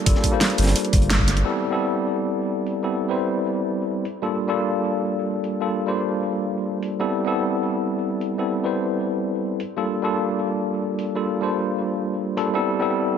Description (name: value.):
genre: liquid drum and bass.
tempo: 173 BPM.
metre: 4/4.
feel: straight.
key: A phrygian.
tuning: A4 = 435 Hz.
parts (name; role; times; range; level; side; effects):
tine electric piano; accompaniment; 0.0-13.2 s; G3 to C5; -22 LUFS; left 1 dB; medium stereo tremolo, tape echo.
saturated sub bass; bass; 0.1-1.4 s; G1; -20 LUFS; equal; none.
crunchy breakbeat drum kit; drums; 0.1-1.3 s; hi-hat, snare drum; -30 LUFS; equal; high-pass filter on hats, high-pass filter on snare, high-pass filter on room.
electronic kick drum; drums; 0.1-1.3 s; none; -21 LUFS; equal; none.
pop drum kit; drums; 0.1-12.4 s; hi-hat, snare drum; -25 LUFS; right 1 dB; low-pass filter on hats, low-pass filter on snare.
room: moderate concert hall reverb, RT60 1.9 s, studio ambience.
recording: none.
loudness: -21 LUFS.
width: side -7 dB against mid.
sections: 0.0-1.5 A section; 1.5-13.2 B section.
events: band accent 1.1.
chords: 0.0 Gm9; 1.5 Am9; 4.1 Gm9; 7.0 Am9; 9.6 Gm9; 12.5 Am9.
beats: | 0.06 0.41 0.76 1.10 | 1.45 1.80 2.14 2.49 | 2.84 3.19 3.53 3.88 | 4.22 4.57 4.92 5.27 | 5.61 5.96 6.31 6.65 | 7.00 7.35 7.69 8.04 | 8.39 8.73 9.08 9.43 | 9.77 10.12 10.47 10.81 | 11.16 11.51 11.86 12.20 | 12.55 12.90.